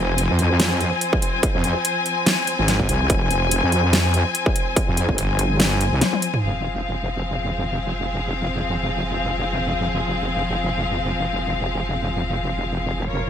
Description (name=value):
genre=heavy wobble dubstep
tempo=144 BPM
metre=4/4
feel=swing 55% on 16ths, half-time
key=F minor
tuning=A4 = 439 Hz
part: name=rich studio string section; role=sustained chords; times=0.0-13.3 s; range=F3 to Ab5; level=-23 LUFS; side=left 3 dB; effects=sidechain pumping
part: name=wobble bass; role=bass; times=0.0-13.3 s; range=F1 to F2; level=-22 LUFS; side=equal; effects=chorus, overdrive
part: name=dubstep drum kit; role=drums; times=0.2-6.4 s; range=hi-hat, snare drum, toms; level=-21 LUFS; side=equal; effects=none
part: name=electronic kick drum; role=drums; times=1.1-5.2 s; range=none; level=-21 LUFS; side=equal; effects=distortion
room=light reverb, digital ambience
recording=none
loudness=-19 LUFS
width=side -9 dB against mid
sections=0.0-6.4 A section; 6.4-13.3 B section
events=drop 0.0-6.4; drum fill 6.0-6.4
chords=0.0 F5; 6.4 Fm